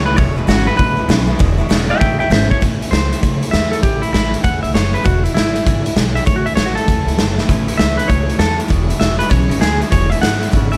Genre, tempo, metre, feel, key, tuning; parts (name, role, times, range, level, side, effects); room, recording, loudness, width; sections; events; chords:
rockabilly; 197 BPM; 4/4; swing 64% on 8ths; A major; A4 = 440 Hz
semi-hollow electric guitar; melody; 0.0-10.8 s; E4 to G5; -22 LUFS; equal; analog delay
picked steel-string acoustic guitar; accompaniment; 0.0-10.8 s; E2 to E4; -26 LUFS; equal
electric guitar through a small old amp; riff; 0.0-2.6, 7.5-10.8 s; E2 to F#3; -28 LUFS; equal; subtle chorus
upright bass; bass; 0.0-10.7 s; E1 to E2; -21 LUFS; equal
raw garage drum kit; drums; 0.2-10.8 s; hi-hat, kick drum, snare drum; -19 LUFS; equal
light reverb, small room ambience; -15 LUFS; mono
0.0-2.6 A section; 2.6-10.8 B section
drum fill 7.3
0.2 E7; 2.6 A; 5.0 E7; 6.3 A; 8.7 E7